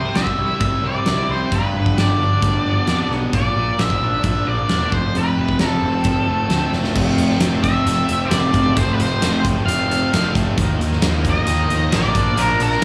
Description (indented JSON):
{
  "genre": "classic rock",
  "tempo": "132 BPM",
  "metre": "4/4",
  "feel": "straight",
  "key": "unclear",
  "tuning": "A4 = 440 Hz",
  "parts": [
    { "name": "octave-fuzz lead guitar", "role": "melody", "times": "0.0-12.8 s", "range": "A4 to F5", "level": "-24 LUFS", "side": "equal", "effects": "distortion, slapback echo" },
    { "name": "raw garage guitar", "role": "riff", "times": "0.0-12.8 s", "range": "F2 to E4", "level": "-24 LUFS", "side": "equal", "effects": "overdrive" },
    { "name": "fuzz picked electric bass", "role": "bass", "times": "0.0-12.8 s", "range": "E1 to F2", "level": "-24 LUFS", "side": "equal", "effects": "overdrive" },
    { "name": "huge arena drum kit", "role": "drums", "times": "0.2-12.8 s", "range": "crash cymbal, hi-hat, kick drum, snare drum", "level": "-24 LUFS", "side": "equal", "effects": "none" },
    { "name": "bright tonewheel organ", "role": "sustained chords", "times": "7.0-12.8 s", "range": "C4 to Bb4", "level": "-36 LUFS", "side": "equal", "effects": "none" }
  ],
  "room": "light reverb, studio reverb",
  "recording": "live gig heard through the venue's PA, club ambience, small room ambience",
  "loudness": "-18 LUFS",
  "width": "mono",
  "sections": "0.0-7.0 A section; 7.0-12.8 B section",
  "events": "drum fill 6.7",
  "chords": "0.0 C; 1.5 G; 3.3 Bb; 4.9 F; 10.6 Ebsus2; 12.2 Bb"
}